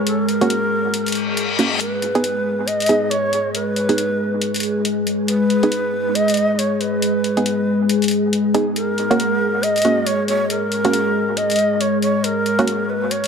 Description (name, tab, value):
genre	deep dubstep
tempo	138 BPM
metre	4/4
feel	swing 59% on 16ths, half-time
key	G# minor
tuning	A4 = 440 Hz
part	breathy long shakuhachi	melody	0.0-13.3 s	A#4 to D#5	-21 LUFS	equal	dub echo
part	deep dark ambient pad	sustained chords	0.0-13.3 s	G#3 to G#4	-20 LUFS	left 1 dB	chorus, built-in reverb
part	electronic hi-hat	drums	0.1-13.3 s	none	-25 LUFS	left 2 dB	none
part	filtered dub chord stab	stabs	0.4-12.7 s	A#3 to G#4	-22 LUFS	right 3 dB	chorus, cassette tape, dub echo
part	reverse cymbal	sound effects	1.1-1.8 s	none	-23 LUFS	left 6 dB	none
room	moderate lush hall reverb, RT60 1.9 s, digital ambience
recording	none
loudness	-16 LUFS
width	side -6 dB against mid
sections	0.0-13.3 A section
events	reverse cymbal 1.1-1.8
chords	0.0 F#; 1.8 G#m; 8.8 F# (rootless)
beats	| 0.07 0.50 0.94 1.37 | 1.81 2.24 2.68 3.11 | 3.55 3.98 4.42 4.85 | 5.29 5.72 6.16 6.59 | 7.02 7.46 7.89 8.33 | 8.76 9.20 9.63 10.07 | 10.50 10.94 11.37 11.81 | 12.24 12.68 13.11